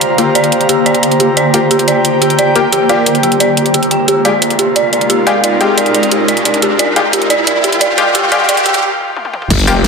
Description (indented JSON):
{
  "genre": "dark technical drum and bass",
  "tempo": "177 BPM",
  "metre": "4/4",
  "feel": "straight",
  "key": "unclear",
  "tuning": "A4 = 441 Hz",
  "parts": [
    { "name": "swarming drone", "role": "sustained chords", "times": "0.0-9.9 s", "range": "C3 to G4", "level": "-18 LUFS", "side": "left 1 dB", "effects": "built-in reverb, sidechain pumping" },
    { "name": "dubstep drum kit", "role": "drums", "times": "0.0-9.9 s", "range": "crash cymbal, hi-hat, snare drum, tambourine, toms", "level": "-16 LUFS", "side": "right 1 dB", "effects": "none" },
    { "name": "riser and impact", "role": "sound effects", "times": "0.7-9.9 s", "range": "none", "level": "-20 LUFS", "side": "right 1 dB", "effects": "none" },
    { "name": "airy breathy pad", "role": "texture", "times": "0.0-9.9 s", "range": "Eb4 to Bb5", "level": "-16 LUFS", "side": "right 1 dB", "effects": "chorus, sidechain pumping" },
    { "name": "dark detuned synth bell", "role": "arpeggios", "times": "0.2-8.7 s", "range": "G4 to G5", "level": "-15 LUFS", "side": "right 2 dB", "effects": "chorus, sidechain pumping, low-pass filter, tape echo" },
    { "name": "band-passed chord stab", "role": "stabs", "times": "0.2-9.7 s", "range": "Ab3 to G4", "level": "-16 LUFS", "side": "left 4 dB", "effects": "chorus, cassette tape, tape echo" },
    { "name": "snarling distorted saw bass", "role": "bass", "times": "9.5-9.9 s", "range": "F1 to G1", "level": "-12 LUFS", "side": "left 1 dB", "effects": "distortion, overdrive, sidechain pumping" },
    { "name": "electronic kick drum", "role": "drums", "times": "9.5-9.6 s", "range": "none", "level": "-19 LUFS", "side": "equal", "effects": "none" }
  ],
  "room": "moderate digital room reverb, RT60 1.1 s, digital ambience",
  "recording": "dense, heavily limited modern master, high-pass filter",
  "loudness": "-9 LUFS",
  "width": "side -4 dB against mid",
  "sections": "0.0-9.5 A section",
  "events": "build-up 0.0-9.5; filter sweep on synth stab 0.0-9.5; riser 0.7-8.8; break 8.8-9.5; drum fill 9.2-9.5; impact 9.5-9.9",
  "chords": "0.0 Gm7; 4.1 Fmadd9"
}